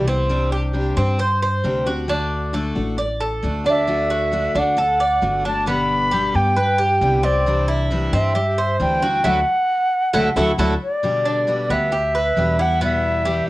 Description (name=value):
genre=latin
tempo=134 BPM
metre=4/4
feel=straight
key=G major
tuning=A4 = 439 Hz
part: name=silver concert flute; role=melody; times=0.0-0.1, 3.7-13.5 s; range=D5 to B5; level=-19 LUFS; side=equal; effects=cassette tape
part: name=picked steel-string acoustic guitar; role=accompaniment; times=0.0-13.5 s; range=B2 to G4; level=-25 LUFS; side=left 2 dB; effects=cassette tape
part: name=Cuban tres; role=arpeggios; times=0.0-13.5 s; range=B3 to D5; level=-23 LUFS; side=right 2 dB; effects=cassette tape
part: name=upright bass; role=bass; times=0.0-13.4 s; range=G1 to G2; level=-23 LUFS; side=equal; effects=none
room=moderate studio reverb, RT60 0.6 s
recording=home recording on cassette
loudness=-17 LUFS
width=side -18 dB against mid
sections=0.0-11.0 A section; 11.0-13.5 A section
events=band accent 9.3-11.0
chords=0.3 Csus2; 2.1 D; 5.7 G; 7.5 Cadd9; 9.3 Dadd9; 11.0 G; 12.8 Em